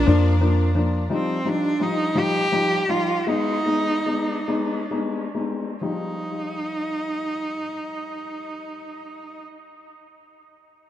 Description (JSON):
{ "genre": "six-eight pop ballad", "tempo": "42-58 BPM (dotted quarters)", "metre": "6/8", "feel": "straight", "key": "Eb major", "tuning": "A4 = 441 Hz", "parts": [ { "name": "warm cello", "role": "melody", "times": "0.0-9.4 s", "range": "C4 to G4", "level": "-25 LUFS", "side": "right 1 dB", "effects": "dub echo" }, { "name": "rich studio string section", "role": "sustained chords", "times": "0.0-1.1 s", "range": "F4 to Bb5", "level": "-34 LUFS", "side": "left 2 dB", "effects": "none" }, { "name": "vintage muted fingered electric bass", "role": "bass", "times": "0.0-1.1 s", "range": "F2", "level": "-19 LUFS", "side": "equal", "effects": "none" }, { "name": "dark upright piano", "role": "accompaniment", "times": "0.1-9.4 s", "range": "F3 to Eb4", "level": "-25 LUFS", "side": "left 3 dB", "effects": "dub echo" } ], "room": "light reverb, small room ambience", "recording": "echo-heavy mix", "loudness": "-21 LUFS", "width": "side -12 dB against mid", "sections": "0.0-1.1 A section; 1.1-5.8 B section; 5.8-10.9 C section", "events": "slowing down 1.1-5.8", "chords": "0.0 Bb; 1.1 Ebadd9; 3.3 Abm; 5.8 Ebadd9" }